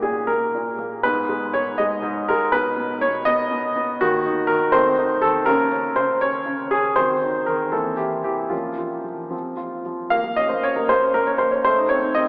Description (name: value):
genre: classical-period piano sonatina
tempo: 80 BPM (dotted quarters)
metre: 6/8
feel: rubato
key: Bb minor from 4.0 s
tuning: A4 = 438 Hz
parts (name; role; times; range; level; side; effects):
- warm grand piano; solo; 0.0-12.3 s; G#2 to F5; -18 LUFS; equal; none
room: wet cathedral reverb, RT60 5.3 s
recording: recorded in a church or concert hall, small speaker sound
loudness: -18 LUFS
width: side -29 dB against mid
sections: 0.0-10.1 A section; 10.1-12.3 B section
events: none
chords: 0.0 D#7/A#; 1.0 G#m; 2.5 Badd9; 4.0 Ebm; 4.7 Adim/Eb; 5.5 Bbm/Db; 7.0 Cdim/Eb; 7.7 C7/E; 8.5 Bbm/F; 9.3 F5; 10.1 Bbm; 11.7 F7/A (rootless)